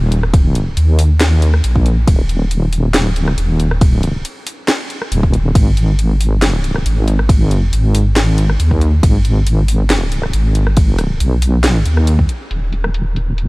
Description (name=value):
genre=deep dubstep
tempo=138 BPM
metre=4/4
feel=swing 53% on 16ths, half-time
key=unclear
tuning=A4 = 440 Hz
part: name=deep soft wobble bass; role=bass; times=0.0-13.5 s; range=Eb1 to Eb2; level=-13 LUFS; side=equal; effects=chorus
part: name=garage drum kit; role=drums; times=0.1-13.5 s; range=handclaps, hi-hat, ride cymbal, rim click, snare drum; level=-21 LUFS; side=equal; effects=low-pass filter on snare, low-pass filter on hats, low-pass filter on cymbals
part: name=electronic kick drum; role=drums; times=0.3-12.3 s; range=none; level=-12 LUFS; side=equal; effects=none
room=digital ambience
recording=vinyl crackle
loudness=-12 LUFS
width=side -24 dB against mid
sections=0.0-12.5 A section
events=drop 0.0-12.5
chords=none